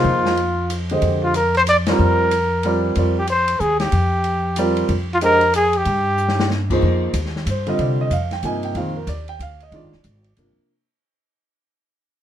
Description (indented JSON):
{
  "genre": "modal jazz",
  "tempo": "186 BPM",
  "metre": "3/4",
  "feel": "swing 62% on 8ths",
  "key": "F dorian",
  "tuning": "A4 = 440 Hz",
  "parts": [
    { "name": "breathy trumpet", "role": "melody", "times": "0.0-6.5 s", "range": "F4 to D5", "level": "-18 LUFS", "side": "equal", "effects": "none" },
    { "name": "warm grand piano", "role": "accompaniment", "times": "0.0-10.7 s", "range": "Bb2 to Ab5", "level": "-21 LUFS", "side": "right 2 dB", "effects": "none" },
    { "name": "upright bass", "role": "bass", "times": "0.0-10.6 s", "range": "D1 to C3", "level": "-22 LUFS", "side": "equal", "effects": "none" },
    { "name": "open jazz drum kit", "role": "drums", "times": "0.3-10.5 s", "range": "crash cymbal, hi-hat, kick drum, ride cymbal, snare drum", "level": "-28 LUFS", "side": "left 2 dB", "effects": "none" }
  ],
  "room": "moderate studio reverb, RT60 0.6 s",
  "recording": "minimal, uncompressed stereo recording",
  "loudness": "-16 LUFS",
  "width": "side -10 dB against mid",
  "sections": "0.0-6.8 A section; 6.8-10.7 B section",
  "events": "band accent 1.8; drum fill 6.2-6.5; fade-out 6.8-10.7",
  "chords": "0.0 Fm11; 3.0 F9sus4; 4.9 N.C.; 6.8 Fm11; 8.8 Gm",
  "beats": "| 0.05 0.38 0.70 | 1.02 1.34 1.67 | 1.99 2.31 2.63 | 2.96 3.28 3.60 | 3.93 4.25 4.57 | 4.89 5.22 5.54 | 5.86 6.18 6.51 | 6.83 7.15 7.47 | 7.79 8.12 8.44 | 8.76 9.08 9.40 | 9.73 10.05 10.37"
}